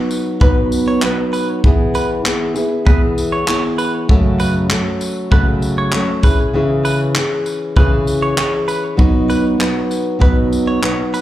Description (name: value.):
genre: acoustic pop.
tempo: 98 BPM.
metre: 4/4.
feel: straight.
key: E major.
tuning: A4 = 440 Hz.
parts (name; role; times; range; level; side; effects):
nylon-string guitar; accompaniment; 0.0-11.2 s; F#2 to B4; -16 LUFS; equal; slapback echo.
natural country drum kit; drums; 0.1-11.2 s; handclaps, kick drum, tambourine; -16 LUFS; equal; none.
direct-recorded clean electric guitar; arpeggios; 0.4-11.2 s; B4 to C#5; -24 LUFS; right 3 dB; phaser, tape echo, slapback echo.
room: light reverb, studio ambience.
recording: live gig heard through the venue's PA, club reverb.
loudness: -13 LUFS.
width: side -13 dB against mid.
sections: 0.0-11.2 A section.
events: none.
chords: 0.0 B; 1.6 E; 4.1 F#m; 6.2 C#m; 9.0 B.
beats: 0.41 1.02 | 1.64 2.25 2.86 3.48 | 4.09 4.70 5.32 5.93 | 6.54 7.15 7.77 8.38 | 8.99 9.60 10.22 10.83.